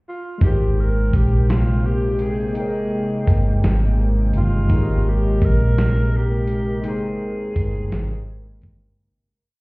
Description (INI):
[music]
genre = slow six-eight R&B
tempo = 56 BPM (dotted quarters)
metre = 6/8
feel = straight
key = Ab major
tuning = A4 = 443 Hz
[part]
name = breathy tenor saxophone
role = melody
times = 0.1-8.6 s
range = F4 to Bb4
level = -27 LUFS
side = equal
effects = none
[part]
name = overdriven tine electric piano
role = accompaniment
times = 0.4-9.0 s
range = Ab3 to G5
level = -28 LUFS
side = left 1 dB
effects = phaser
[part]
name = lush unison pad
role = sustained chords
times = 0.9-8.9 s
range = C3 to G5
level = -28 LUFS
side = equal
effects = chorus
[part]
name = vintage muted fingered electric bass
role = bass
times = 0.4-9.0 s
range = G1 to Bb1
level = -19 LUFS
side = equal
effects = none
[part]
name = dusty soul sampler-style drum kit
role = drums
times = 0.4-8.8 s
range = hi-hat, kick drum, snare drum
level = -20 LUFS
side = equal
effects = none
[sound]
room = digital ambience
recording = heard muffled through a wall, stone room reverb, EQ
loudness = -17 LUFS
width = side -25 dB against mid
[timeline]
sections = 0.0-0.4 pickup bar; 0.4-9.0 chorus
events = fade-out 6.8-9.0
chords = 0.4 Abmaj9